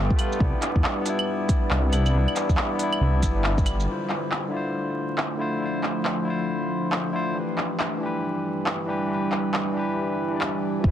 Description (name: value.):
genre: future garage.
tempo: 138 BPM.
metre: 4/4.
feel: swing 62% on 16ths.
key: D dorian.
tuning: A4 = 441 Hz.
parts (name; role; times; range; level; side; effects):
barky tine electric piano; accompaniment; 0.0-10.9 s; D3 to D5; -28 LUFS; left 1 dB; sidechain pumping, tape echo.
deep dark ambient pad; sustained chords; 0.0-10.9 s; F3 to D5; -29 LUFS; equal; chorus, built-in reverb, sidechain pumping.
dark detuned saw bass; bass; 0.0-3.9, 10.8-10.9 s; D1 to E2; -22 LUFS; equal; sidechain pumping.
electronic kick drum; drums; 0.1-3.6, 10.8-10.9 s; none; -23 LUFS; equal; none.
organic electronic drum kit; drums; 0.2-10.5 s; claves, handclaps, hi-hat, shaker; -28 LUFS; equal; none.
room: light reverb.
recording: dense, heavily limited modern master, vinyl crackle.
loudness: -22 LUFS.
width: side -10 dB against mid.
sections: 0.0-3.9 A section; 3.9-10.8 B section.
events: band accent 3.4; filter sweep on ambient pad 3.9-10.8.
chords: 0.4 Cmaj9; 3.9 Dm7; 7.4 Em7.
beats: | 0.40 0.84 1.27 1.71 | 2.14 2.58 3.01 3.45 | 3.88 4.32 4.75 5.19 | 5.62 6.05 6.49 6.92 | 7.36 7.79 8.23 8.66 | 9.10 9.53 9.97 10.40 | 10.84.